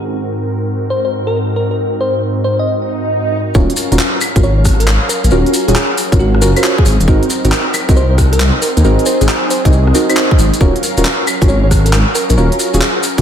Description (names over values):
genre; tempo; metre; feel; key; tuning
UK garage, two-step garage; 136 BPM; 4/4; swing 67% on 16ths; Eb dorian; A4 = 441 Hz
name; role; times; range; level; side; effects
warm analog pad; sustained chords; 0.0-13.2 s; Ab2 to F5; -20 LUFS; right 1 dB; wide subtle chorus, sidechain pumping
bell-like FM electric piano; melody; 0.9-12.8 s; Gb4 to Eb5; -20 LUFS; left 1 dB; chorus, ping-pong delay
swell; sound effects; 2.8-3.5 s; none; -20 LUFS; right 4 dB; none
deep mellow chord stab; stabs; 3.5-13.2 s; C4 to C5; -16 LUFS; right 1 dB; chorus, ping-pong delay
dark detuned saw bass; bass; 3.5-13.2 s; Eb1 to Eb2; -12 LUFS; equal; sidechain pumping
electronic kick drum; drums; 3.5-13.2 s; none; -13 LUFS; equal; none
maracas; percussion; 3.5-13.2 s; none; -24 LUFS; left 5 dB; none
garage drum kit; drums; 3.7-13.2 s; claves, handclaps, hi-hat, rim click; -18 LUFS; equal; none
room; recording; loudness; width
moderate lush hall reverb, RT60 1.8 s, digital ambience; dreamy mix soaked in reverb; -10 LUFS; side -9 dB against mid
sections
0.0-3.5 A section; 3.5-13.2 B section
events
swell 2.8-3.5; drop 3.5-13.2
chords
0.0 Ab7; 3.5 Ebm9 (rootless); 6.9 Ab7; 10.6 Ebm9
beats
| 0.02 0.46 0.90 1.34 | 1.78 2.23 2.67 3.11 | 3.55 3.99 4.43 4.87 | 5.31 5.75 6.20 6.64 | 7.08 7.52 7.96 8.40 | 8.84 9.29 9.73 10.17 | 10.61 11.05 11.49 11.93 | 12.37 12.81